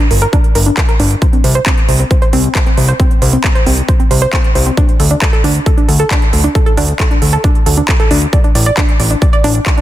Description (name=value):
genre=uplifting trance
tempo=135 BPM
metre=4/4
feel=straight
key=unclear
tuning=A4 = 440 Hz
part: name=analog pluck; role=arpeggios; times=0.0-9.8 s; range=C4 to D5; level=-16 LUFS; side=right 1 dB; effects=chorus, sidechain pumping, tape echo
part: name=big-room dance drum kit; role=drums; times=0.0-9.8 s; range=handclaps, hi-hat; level=-18 LUFS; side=right 1 dB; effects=none
part: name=fat analog bass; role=bass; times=0.1-9.6 s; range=G1 to D2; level=-12 LUFS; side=equal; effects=sidechain pumping
part: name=electronic kick drum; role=drums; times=0.3-9.8 s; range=none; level=-12 LUFS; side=equal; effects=none
room=light reverb, digital ambience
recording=dense, heavily limited modern master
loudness=-9 LUFS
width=side -14 dB against mid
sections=0.0-9.8 A section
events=none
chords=0.0 Gm; 1.2 N.C.; 4.8 D5; 8.3 Asus4